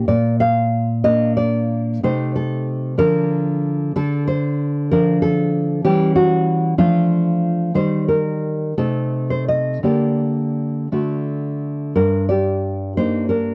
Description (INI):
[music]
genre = romantic piece for solo classical guitar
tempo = 55-65 BPM (dotted quarters)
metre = 6/8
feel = rubato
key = G minor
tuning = A4 = 435 Hz
[part]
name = nylon-string guitar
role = solo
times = 0.0-13.5 s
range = G2 to F5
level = -19 LUFS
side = equal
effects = none
[sound]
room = light reverb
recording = dry, close 1970s-style studio recording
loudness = -19 LUFS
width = mono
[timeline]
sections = 0.0-12.0 A section; 12.0-13.5 A section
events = none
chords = 0.0 Gm/Bb (rootless); 2.0 Adim/C; 3.0 Bb/D; 5.8 C#dim/E; 6.8 Dm/F; 7.7 Eb; 8.8 Adim/C; 9.8 Gm/D; 10.9 D; 12.0 Gm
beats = | 0.08 1.05 | 2.04 2.99 | 3.95 4.91 | 5.84 6.79 | 7.75 8.76 | 9.82 10.90 | 11.95 12.95